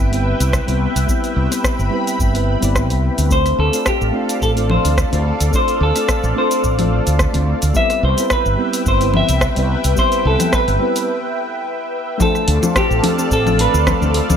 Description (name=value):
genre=sunset chillout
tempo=108 BPM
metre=4/4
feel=swing 54% on 16ths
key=D dorian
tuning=A4 = 440 Hz
part: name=soft electric-piano-like synth keys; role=accompaniment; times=0.0-14.3 s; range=G3 to D5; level=-22 LUFS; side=moving between left 5 dB and right 4 dB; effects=chorus, auto-pan, ping-pong delay
part: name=lush unison pad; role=sustained chords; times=0.0-14.4 s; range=A4 to B5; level=-23 LUFS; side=left 1 dB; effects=chorus, phaser, vintage 12-bit sampler grit
part: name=mellow fretless electric bass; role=bass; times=0.0-14.4 s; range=G1 to D2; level=-17 LUFS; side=equal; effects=lush chorus
part: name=deep house drum kit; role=drums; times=0.1-14.4 s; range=congas, hi-hat, rim click, shaker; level=-21 LUFS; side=left 2 dB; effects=overdrive, small room reverb
part: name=electronic kick drum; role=drums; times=0.5-14.0 s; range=none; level=-21 LUFS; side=equal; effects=small room reverb
part: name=semi-hollow electric guitar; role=melody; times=3.3-14.4 s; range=G4 to E5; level=-20 LUFS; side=equal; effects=tape echo
part: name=steel pan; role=arpeggios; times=12.2-14.4 s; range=C4 to A4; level=-26 LUFS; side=right 3 dB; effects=ping-pong delay
room=light reverb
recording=none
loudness=-14 LUFS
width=side -8 dB against mid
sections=0.0-12.2 A section; 12.2-14.4 B section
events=break 11.1-12.2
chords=0.0 Cmaj7; 3.3 Dm7; 7.8 Cmaj7; 12.2 Dm7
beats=0.53 | 1.09 1.64 2.20 2.75 | 3.31 3.87 4.42 4.98 | 5.53 6.09 6.64 7.20 | 7.75 8.31 8.87 9.42 | 9.98 10.53 11.09 11.64 | 12.20 12.75 13.31 13.87